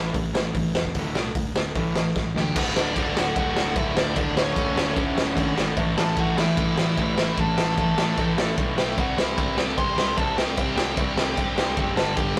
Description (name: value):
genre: punk rock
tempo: 150 BPM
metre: 4/4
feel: straight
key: D major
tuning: A4 = 442 Hz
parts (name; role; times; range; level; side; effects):
- cranked stack guitar; riff; 0.0-12.4 s; D2 to C4; -36 LUFS; equal; none
- distorted electric guitar; riff; 0.0-12.4 s; D2 to C4; -34 LUFS; equal; distortion
- fuzz picked electric bass; bass; 0.0-12.4 s; D1 to D2; -30 LUFS; equal; overdrive
- raw garage drum kit; drums; 0.1-12.4 s; crash cymbal, hi-hat, kick drum, snare drum; -27 LUFS; equal; none
- nasal lead guitar with a parked wah; melody; 2.4-12.4 s; C#4 to C6; -31 LUFS; equal; overdrive
- scooped high-gain guitar; riff; 2.6-12.4 s; D2 to C4; -36 LUFS; equal; none
room: light reverb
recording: rough rehearsal-room recording, tube saturation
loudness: -23 LUFS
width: mono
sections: 0.0-2.6 A section; 2.6-12.4 B section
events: drum fill 2.2-2.6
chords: 0.0 A5; 0.9 D5; 1.8 A5; 2.6 D; 5.8 A5; 9.0 C